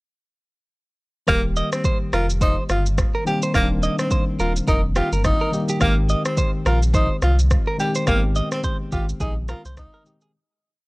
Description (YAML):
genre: afrobeats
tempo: 106 BPM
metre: 4/4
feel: swing 58% on 16ths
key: Eb major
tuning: A4 = 440 Hz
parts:
  - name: breathy tenor saxophone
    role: melody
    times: 1.3-10.2 s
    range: Bb3 to G4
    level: -25 LUFS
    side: equal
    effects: analog delay
  - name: tine electric piano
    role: accompaniment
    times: 1.3-10.4 s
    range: Eb3 to G4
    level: -26 LUFS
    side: left 1 dB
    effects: none
  - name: direct-recorded clean electric guitar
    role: riff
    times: 1.3-10.3 s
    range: G4 to F5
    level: -27 LUFS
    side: right 2 dB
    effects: analog delay
  - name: warm sub bass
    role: bass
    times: 1.3-9.9 s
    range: Eb1 to C2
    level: -21 LUFS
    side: equal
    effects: none
  - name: afro-pop drum kit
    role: drums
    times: 1.3-10.3 s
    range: kick drum, rim click, shaker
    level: -23 LUFS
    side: equal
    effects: none
room: little or no reverb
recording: dry, gritty hardware recording, cassette tape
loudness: -18 LUFS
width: side -24 dB against mid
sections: 1.3-10.3 verse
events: fade-out 8.1-10.3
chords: 1.3 Eb; 5.8 Abmaj7